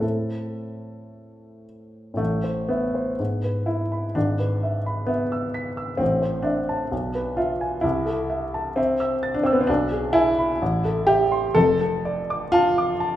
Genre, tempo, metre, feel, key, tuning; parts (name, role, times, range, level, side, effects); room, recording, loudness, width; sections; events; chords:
classical, romantic character piece for solo piano; 53-67 BPM; 2/4; rubato; A minor; A4 = 442 Hz
warm baby grand piano; solo; 0.0-13.2 s; F1 to B6; -21 LUFS; equal
wet recital hall reverb, RT60 1.6 s; minimal, uncompressed stereo recording; -21 LUFS; side -12 dB against mid
0.0-2.2 A section; 2.2-13.2 B section
0.0 Am; 3.2 E/G#; 6.0 Am; 6.9 E7/B; 7.8 Am/C; 9.7 G#dim/B; 10.6 Am; 11.6 Dm/F